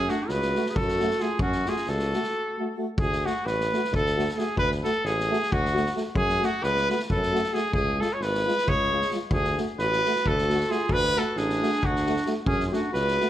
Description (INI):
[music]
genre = balkan folk, Balkan brass band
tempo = 266 BPM (eighths)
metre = 7/8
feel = straight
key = unclear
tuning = A4 = 439 Hz
[part]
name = clear trumpet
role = melody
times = 0.0-13.3 s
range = F#4 to C#5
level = -26 LUFS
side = equal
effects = none
[part]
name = mellow clarinet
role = second line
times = 0.0-2.8, 8.7-13.3 s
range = C#4 to G#4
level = -32 LUFS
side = right 3 dB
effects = none
[part]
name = clear tuba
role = bass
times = 0.0-13.2 s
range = G#1 to F#2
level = -30 LUFS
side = equal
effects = none
[part]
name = mellow French horn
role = accompaniment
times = 0.1-13.3 s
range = E#4 to F#4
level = -35 LUFS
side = left 7 dB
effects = none
[part]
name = warm euphonium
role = accompaniment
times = 0.1-13.3 s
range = G#3 to A3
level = -33 LUFS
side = right 3 dB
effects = none
[part]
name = street-band drum kit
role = percussion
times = 0.1-13.3 s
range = kick drum, snare drum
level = -32 LUFS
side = equal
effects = none
[sound]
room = moderate recital hall reverb, RT60 1.6 s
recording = none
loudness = -23 LUFS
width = side -12 dB against mid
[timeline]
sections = 0.0-3.0 A section; 3.0-13.3 A section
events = break 2.3-3.0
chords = 0.0 F#m; 3.0 D; 6.2 F#m; 7.7 C#; 9.3 D; 12.5 F#m